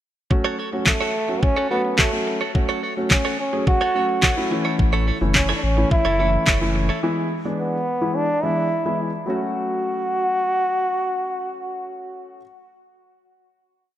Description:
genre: dance-pop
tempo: 107 BPM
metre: 4/4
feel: straight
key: F# minor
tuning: A4 = 440 Hz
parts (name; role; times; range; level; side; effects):
- dark concert grand piano; accompaniment; 0.3-12.4 s; E3 to G#4; -26 LUFS; left 1 dB; sidechain pumping
- direct-recorded clean electric guitar; riff; 0.3-7.0 s; E4 to C#5; -28 LUFS; right 5 dB; wide subtle chorus
- smooth R&B drum kit; drums; 0.3-6.6 s; handclaps, kick drum, snare drum; -20 LUFS; equal; none
- trombone with cup mute; melody; 0.9-12.3 s; A3 to F#4; -23 LUFS; equal; ping-pong delay
- warm sub bass; bass; 4.8-6.9 s; F#1 to A1; -22 LUFS; equal; sidechain pumping
room: moderate lush hall reverb, RT60 2.6 s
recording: bright 1980s-style digital production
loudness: -18 LUFS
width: side -12 dB against mid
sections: 0.3-9.3 verse; 9.3-11.5 final chord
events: none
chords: 0.3 F#m; 4.5 A; 7.0 E; 9.3 F#m

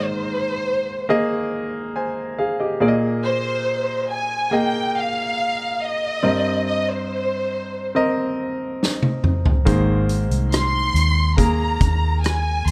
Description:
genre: pop ballad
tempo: 70 BPM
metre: 4/4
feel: straight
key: Ab major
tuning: A4 = 440 Hz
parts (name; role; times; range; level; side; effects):
- warm studio violin section; melody; 0.0-12.7 s; C5 to C6; -25 LUFS; equal; none
- clear concert grand piano; accompaniment; 0.0-12.7 s; G2 to Ab5; -25 LUFS; equal; none
- loose indie drum kit; drums; 8.8-12.7 s; hi-hat, kick drum, rim click, snare drum, toms; -22 LUFS; equal; none
- vintage muted fingered electric bass; bass; 9.7-12.7 s; Ab1 to Eb2; -22 LUFS; equal; none
room: light reverb, small room reverb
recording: none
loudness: -21 LUFS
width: mono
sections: 0.0-12.7 A section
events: drum fill 8.8-9.7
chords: 0.0 Abadd9; 2.8 Ebsus4; 6.2 Cm7; 9.7 Abadd9

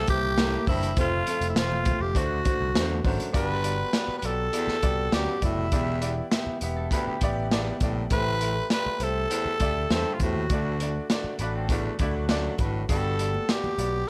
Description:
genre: uptempo 1960s-style soul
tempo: 101 BPM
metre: 4/4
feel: straight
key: G major from 3.3 s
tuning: A4 = 439 Hz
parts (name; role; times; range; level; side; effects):
- growling tenor saxophone; melody; 0.0-14.1 s; E4 to B4; -31 LUFS; equal; plate reverb
- bright upright piano; accompaniment; 0.0-14.0 s; G2 to A5; -34 LUFS; equal; plate reverb
- overdriven picked electric bass; bass; 0.1-14.0 s; E1 to E2; -32 LUFS; equal; none
- crunchy breakbeat drum kit; drums; 0.1-13.9 s; hi-hat, kick drum, snare drum; -30 LUFS; equal; none
- congas; percussion; 0.1-3.2, 12.9-13.9 s; none; -42 LUFS; equal; none
- raspy baritone saxophone; riff; 0.4-13.3 s; D2 to A2; -36 LUFS; equal; none
- electric guitar through a small old amp; riff; 6.8-12.9 s; F#3 to B4; -40 LUFS; equal; subtle chorus
room: light reverb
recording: none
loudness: -26 LUFS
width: mono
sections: 0.0-3.3 A section; 3.3-14.1 B section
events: upright piano fill 6.9-8.1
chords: 0.0 C7; 1.0 F; 2.2 D7; 3.3 Gmaj7; 5.7 Em7; 8.1 Am7; 10.5 D; 12.9 Gmaj7

